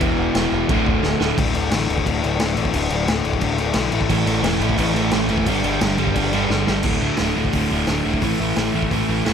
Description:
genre	punk rock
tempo	176 BPM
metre	4/4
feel	straight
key	unclear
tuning	A4 = 440 Hz
part	crunchy overdriven guitar	riff	0.0-1.4, 4.1-9.3 s	D2 to A3	-22 LUFS	right 13 dB	none
part	distorted electric guitar	riff	0.0-9.3 s	D2 to A3	-22 LUFS	left 12 dB	distortion
part	growling picked electric bass	bass	0.0-9.3 s	D1 to B1	-25 LUFS	right 1 dB	overdrive
part	raw garage drum kit	drums	0.0-9.3 s	crash cymbal, hi-hat, kick drum, snare drum	-23 LUFS	right 1 dB	none
room	light reverb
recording	none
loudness	-17 LUFS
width	side -7 dB against mid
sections	0.0-1.4 A section; 1.4-6.8 B section; 6.8-9.3 C section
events	drum fill 1.0-1.4, 6.5-6.8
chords	0.0 E5; 0.7 D5; 3.9 A5; 5.5 G5; 6.8 D5; 8.2 A5

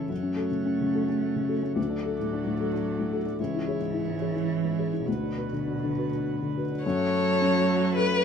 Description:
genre	neoclassical piano and strings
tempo	101-112 BPM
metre	3/4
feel	rubato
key	F# minor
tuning	A4 = 440 Hz
part	felt-muted upright piano	accompaniment	0.0-8.2 s	C#2 to A5	-27 LUFS	left 4 dB	none
part	pedal harmonium	sustained chords	0.0-8.2 s	F#3 to D5	-37 LUFS	right 2 dB	none
part	rich cello	second line	0.1-8.2 s	B2 to A3	-31 LUFS	right 7 dB	none
part	rich violin	melody	6.9-8.2 s	B4 to C#5	-26 LUFS	left 3 dB	none
part	clear viola	accompaniment	6.9-8.2 s	A4 to B4	-32 LUFS	right 5 dB	none
room	light reverb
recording	minimal, uncompressed stereo recording, faint mains hum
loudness	-25 LUFS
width	side -7 dB against mid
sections	0.1-6.8 A section; 6.8-8.2 B section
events	none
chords	0.1 F#m; 1.8 D; 3.4 C#m; 5.1 Bm/D; 6.8 F#m

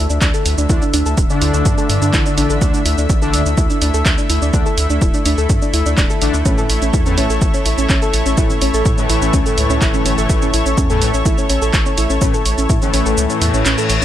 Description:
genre	melodic techno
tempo	125 BPM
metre	4/4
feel	straight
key	unclear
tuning	A4 = 438 Hz
part	lush unison pad	sustained chords	0.0-14.0 s	D3 to E5	-22 LUFS	left 1 dB	chorus, sidechain pumping
part	soft round pluck	arpeggios	0.0-14.0 s	C#4 to A5	-21 LUFS	equal	chorus, vintage 12-bit sampler grit, sidechain pumping, dub echo
part	round analog bass	bass	0.0-14.0 s	D1 to A2	-19 LUFS	equal	sidechain pumping
part	punchy analog drum machine	drums	0.1-14.0 s	handclaps, hi-hat, shaker	-21 LUFS	right 2 dB	none
part	electronic kick drum	drums	0.2-12.8 s	none	-17 LUFS	equal	overdrive
part	analog synth brass	stabs	0.7-14.0 s	A2 to D4	-22 LUFS	left 3 dB	chorus, vintage 12-bit sampler grit, sidechain pumping, dub echo
part	reverse cymbal	sound effects	13.4-14.0 s	none	-22 LUFS	left 6 dB	none
room	little or no reverb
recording	none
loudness	-13 LUFS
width	side -12 dB against mid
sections	0.0-14.0 A section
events	kick drops out 13.2-14.0; reverse cymbal 13.4-14.0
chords	0.0 Dsus2; 6.5 A

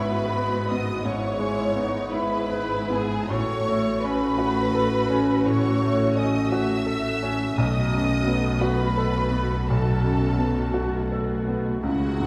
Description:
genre	classical, romantic movement for piano and orchestra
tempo	56 BPM (dotted quarters)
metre	12/8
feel	rubato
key	unclear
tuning	A4 = 444 Hz
part	clear baby grand piano	melody	0.0-12.3 s	B1 to B4	-28 LUFS	equal	none
part	rich studio violin section	melody	0.0-12.3 s	F#5 to E6	-35 LUFS	equal	none
part	rich symphonic violin section	second line	0.0-12.3 s	F#4 to E5	-32 LUFS	equal	none
part	rich studio viola section	accompaniment	0.0-12.3 s	G#3 to F#4	-33 LUFS	equal	none
part	rich studio cello section	bass	0.0-12.3 s	G#2 to C#3	-33 LUFS	equal	none
part	rich studio double bass section	bass	0.0-12.3 s	G#1 to C#2	-32 LUFS	equal	none
room	wet scoring stage reverb, RT60 2.0 s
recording	heard from further back in the room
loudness	-24 LUFS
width	mono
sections	0.0-12.3 A section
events	none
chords	0.0 E/G#; 3.3 F#m/A; 7.6 B7

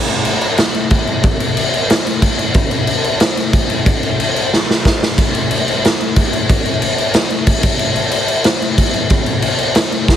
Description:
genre	punk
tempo	183 BPM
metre	4/4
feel	straight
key	none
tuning	none
part	raw garage drum kit	drums	0.1-10.2 s	crash cymbal, kick drum, snare drum, splash cymbal	-12 LUFS	equal	none
room	little or no reverb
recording	heavily compressed radio sound, multiband compression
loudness	-12 LUFS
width	side -10 dB against mid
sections	0.0-10.2 A section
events	half time 0.0-10.2; drum fill 4.5-5.2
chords	none

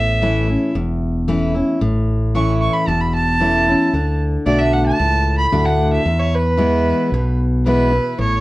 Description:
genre	honky-tonk and classic country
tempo	113 BPM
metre	4/4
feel	straight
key	A major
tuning	A4 = 440 Hz
part	rich fiddle	melody	0.0-8.4 s	B4 to C#6	-19 LUFS	right 2 dB	none
part	picked steel-string acoustic guitar	accompaniment	0.0-8.4 s	E2 to F#4	-19 LUFS	left 1 dB	none
part	fingered electric bass	bass	0.0-8.4 s	E1 to E2	-19 LUFS	equal	none
room	moderate studio ambience, RT60 0.5 s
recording	worn, warbling old tape, cassette tape, warbly pitch drift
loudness	-15 LUFS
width	side -18 dB against mid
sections	0.0-8.2 A section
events	fiddle solo 0.0-8.2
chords	0.0 A; 3.9 D; 6.1 E

